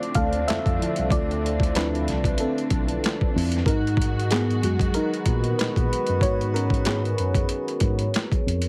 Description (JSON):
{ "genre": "R&B, neo-soul", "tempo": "94 BPM", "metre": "4/4", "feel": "swing 55% on 16ths", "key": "unclear", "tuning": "A4 = 440 Hz", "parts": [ { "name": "mellow FM electric piano", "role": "accompaniment", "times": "0.0-8.7 s", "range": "F3 to F5", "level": "-28 LUFS", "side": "equal", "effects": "chorus, phaser" }, { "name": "dark studio string section", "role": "sustained chords", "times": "0.0-6.2 s", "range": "D3 to F#4", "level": "-35 LUFS", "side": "equal", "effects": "none" }, { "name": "boom bap sampler-style drum kit", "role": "drums", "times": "0.0-8.7 s", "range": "handclaps, hi-hat, kick drum, snare drum", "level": "-27 LUFS", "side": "equal", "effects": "overdrive" }, { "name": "mellow tine electric piano", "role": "bass", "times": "0.2-8.7 s", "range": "B1 to A#2", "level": "-29 LUFS", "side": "equal", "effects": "none" }, { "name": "mellow horn section", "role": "stabs", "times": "4.9-8.4 s", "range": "D#3 to B4", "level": "-34 LUFS", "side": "equal", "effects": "none" } ], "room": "little or no reverb", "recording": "heavily compressed radio sound, multiband compression", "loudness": "-23 LUFS", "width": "mono", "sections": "0.0-8.7 A section", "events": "FM electric piano solo 0.0-8.7", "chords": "0.0 Dm9; 3.7 G#m9" }